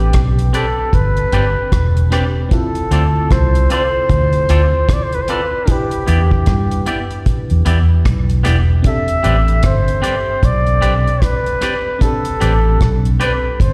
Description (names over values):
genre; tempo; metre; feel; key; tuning
lovers rock reggae; 76 BPM; 4/4; swing 60% on 16ths; unclear; A4 = 441 Hz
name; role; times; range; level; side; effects
warm flugelhorn; melody; 0.0-13.7 s; G4 to E5; -22 LUFS; equal; tape echo, slapback echo
FM electric piano; accompaniment; 0.0-13.7 s; C4 to B4; -29 LUFS; equal; chorus, slapback echo
vintage muted fingered electric bass; bass; 0.0-13.7 s; E1 to G2; -16 LUFS; equal; none
deep reggae drum kit; drums; 0.1-13.7 s; hi-hat, kick drum, rim click; -19 LUFS; equal; none
twangy electric guitar; stabs; 0.5-13.3 s; B3 to D5; -24 LUFS; equal; slapback echo
room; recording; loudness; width
little or no reverb; live gig heard through the venue's PA, recital hall reverb; -15 LUFS; mono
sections
0.0-13.7 A section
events
none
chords
0.0 Am11; 2.5 Dm7; 5.7 Em7; 8.8 Am11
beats
0.14 0.93 1.72 | 2.51 3.31 4.10 4.89 | 5.68 6.47 7.26 8.05 | 8.85 9.64 10.43 11.22 | 12.01 12.81 13.60